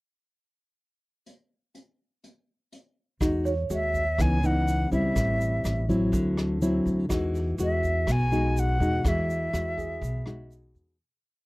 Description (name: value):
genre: bossa nova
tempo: 123 BPM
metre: 4/4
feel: straight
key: E major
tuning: A4 = 440 Hz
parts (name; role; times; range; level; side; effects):
- vintage brush drum kit; drums; 1.3-10.9 s; hi-hat, kick drum, rim click; -33 LUFS; equal; none
- nylon-string guitar; accompaniment; 3.2-11.0 s; A2 to F#4; -27 LUFS; left 1 dB; none
- upright bass; bass; 3.2-11.0 s; A1 to E2; -28 LUFS; equal; none
- tube shaker; percussion; 3.2-11.0 s; none; -47 LUFS; right 6 dB; none
- warm concert grand piano; accompaniment; 3.5-4.4, 9.8-11.1 s; G#4 to C#5; -35 LUFS; right 5 dB; none
- bright reedy concert flute; melody; 3.7-10.5 s; E5 to G#5; -29 LUFS; equal; none
room: light reverb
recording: none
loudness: -23 LUFS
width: side -21 dB against mid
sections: 1.3-3.2 pickup bar; 3.2-11.0 A section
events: fade-out 9.1-11.0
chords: 1.3 N.C.; 3.2 Emaj9; 4.2 C#m9; 5.2 Am7; 6.1 D9; 7.1 Emaj9